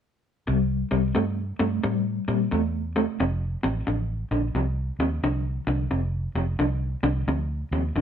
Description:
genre	blues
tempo	88 BPM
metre	4/4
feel	swing 65% on 8ths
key	C mixolydian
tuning	A4 = 439 Hz
part	electric guitar through a small old amp	riff	0.5-8.0 s	F2 to A3	-26 LUFS	left 1 dB	tremolo
part	vintage muted fingered electric bass	bass	0.5-8.0 s	F1 to Bb2	-27 LUFS	right 1 dB	none
room	light reverb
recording	none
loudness	-23 LUFS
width	side -8 dB against mid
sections	0.5-8.0 A section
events	none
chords	0.5 C; 3.2 F5

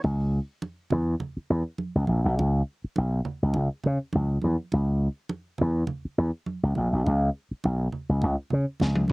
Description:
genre	funk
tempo	103 BPM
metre	4/4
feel	straight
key	C# dorian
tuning	A4 = 439 Hz
part	slap bass with an envelope filter	bass	0.0-9.0 s	A#1 to C#3	-23 LUFS	equal	none
part	congas	percussion	0.0-9.1 s	none	-34 LUFS	right 3 dB	none
part	crisp fusion drum kit	drums	8.8-9.1 s	snare drum, toms	-25 LUFS	left 1 dB	cassette tape
room	little or no reverb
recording	home recording on cassette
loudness	-24 LUFS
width	side -28 dB against mid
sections	0.0-9.1 A section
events	drum fill 8.8-9.1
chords	none

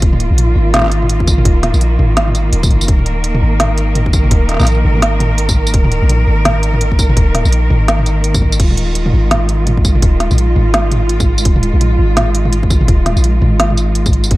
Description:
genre	half-time drum and bass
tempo	168 BPM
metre	4/4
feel	swing 59% on 16ths, half-time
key	unclear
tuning	A4 = 439 Hz
part	clear studio cello section	sustained chords	0.0-14.4 s	Eb3 to Bb4	-19 LUFS	right 2 dB	sidechain pumping
part	long sustained 808-style bass	bass	0.0-14.4 s	Eb1 to Bb1	-13 LUFS	equal	none
part	electronic kick drum	drums	0.0-14.4 s	none	-13 LUFS	equal	none
part	organic electronic drum kit	drums	0.0-14.4 s	crash cymbal, hi-hat, snare drum, tambourine, toms	-17 LUFS	equal	none
room	light reverb, digital ambience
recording	none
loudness	-10 LUFS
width	side -18 dB against mid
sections	0.0-14.4 A section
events	none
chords	0.0 Eb5

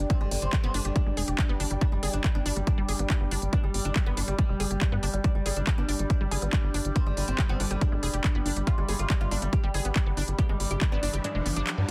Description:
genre	psychedelic trance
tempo	140 BPM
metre	4/4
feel	straight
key	G major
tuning	A4 = 440 Hz
part	overtone-sweeping drone	sustained chords	0.0-11.9 s	G3	-42 LUFS	equal	chorus, built-in reverb, phaser, sidechain pumping
part	tight sequencer bass	bass	0.0-11.9 s	F1 to G2	-32 LUFS	equal	none
part	airy breathy pad	texture	0.0-11.9 s	G4 to B5	-43 LUFS	equal	chorus, sidechain pumping
part	oud	melody	0.1-11.9 s	D3 to G4	-38 LUFS	equal	phaser, sidechain pumping, digital delay
part	unison pluck	riff	0.1-11.9 s	G3 to Ab4	-40 LUFS	equal	sidechain pumping, dub echo
part	electronic kick drum	drums	0.1-10.9 s	none	-28 LUFS	equal	overdrive
part	techno drum kit	drums	0.1-11.9 s	handclaps, hi-hat	-36 LUFS	equal	none
part	riser	sound effects	10.3-11.9 s	none	-43 LUFS	equal	none
room	digital ambience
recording	dense, heavily limited modern master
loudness	-27 LUFS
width	mono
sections	0.0-11.9 A section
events	riser 10.3-11.9; kick drops out 11.2-11.9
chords	0.0 G5

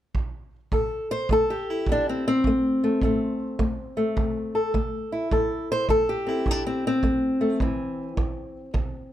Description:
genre	acoustic country blues, solo or duo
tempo	105 BPM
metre	4/4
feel	swing 64% on 8ths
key	A minor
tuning	A4 = 440 Hz
part	kick drum	drums	0.1-8.9 s	none	-28 LUFS	right 2 dB	none
part	fingerpicked old ladder-braced acoustic guitar	melody	0.7-9.1 s	E2 to C5	-23 LUFS	left 1 dB	plate reverb
room	moderate small room reverb, RT60 0.5 s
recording	none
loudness	-22 LUFS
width	side -12 dB against mid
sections	0.7-9.1 A section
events	none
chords	0.0 N.C.; 0.7 Am

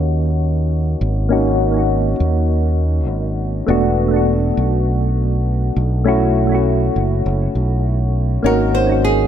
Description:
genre	sunset chillout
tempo	101 BPM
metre	4/4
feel	straight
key	unclear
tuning	A4 = 442 Hz
part	soft electric-piano-like synth keys	accompaniment	0.0-9.3 s	A3 to Gb4	-18 LUFS	equal	chorus, auto-pan, low-pass filter, tape echo
part	fingered electric bass	bass	0.0-9.3 s	E1 to Eb2	-17 LUFS	equal	none
part	flamenco guitar	melody	8.5-9.3 s	Ab4 to C5	-17 LUFS	right 3 dB	none
room	light reverb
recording	none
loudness	-15 LUFS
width	side -9 dB against mid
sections	0.0-9.3 A section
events	filter sweep on synth keys 0.0-9.3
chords	0.0 Ab9sus4; 3.7 E9sus4; 6.1 B9sus4; 8.4 Ab9sus4

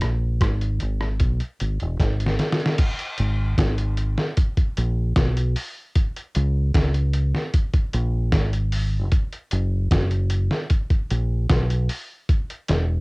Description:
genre	lovers rock reggae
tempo	76 BPM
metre	4/4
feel	straight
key	G# minor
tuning	A4 = 438 Hz
part	deep dub fingered electric bass	bass	0.0-13.0 s	E1 to C#2	-21 LUFS	equal	none
part	lo-fi sampler-style drum kit	drums	0.0-12.9 s	crash cymbal, hi-hat, kick drum, rim click, snare drum	-21 LUFS	equal	cassette tape
room	little or no reverb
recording	home recording on cassette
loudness	-20 LUFS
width	side -30 dB against mid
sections	0.0-2.8 A section; 2.8-13.0 B section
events	drum fill 2.0-2.8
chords	none

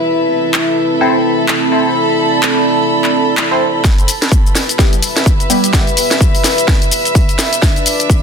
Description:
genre	bass house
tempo	127 BPM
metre	4/4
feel	swing 59% on 16ths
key	E minor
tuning	A4 = 440 Hz
part	dark analog pad	sustained chords	0.0-8.2 s	B3 to E5	-17 LUFS	right 1 dB	chorus, sidechain pumping
part	warm chamber string section	texture	0.0-8.2 s	D4 to B5	-16 LUFS	equal	sidechain pumping
part	garage drum kit	drums	0.5-8.2 s	handclaps, hi-hat, shaker, snare drum	-16 LUFS	left 1 dB	none
part	band-passed chord stab	stabs	1.0-5.9 s	G3 to C5	-18 LUFS	equal	phaser, lush chorus, sidechain pumping, tape echo
part	electronic kick drum	drums	3.8-8.2 s	none	-12 LUFS	equal	none
room	moderate digital room reverb, RT60 1.1 s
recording	dense, heavily limited modern master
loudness	-10 LUFS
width	side -6 dB against mid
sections	0.0-3.8 A section; 3.8-8.2 B section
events	build-up 3.8-8.2; drum fill 3.8-8.2; filter sweep on synth stab 3.8-8.2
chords	0.1 Am; 3.8 Em; 7.6 Dm

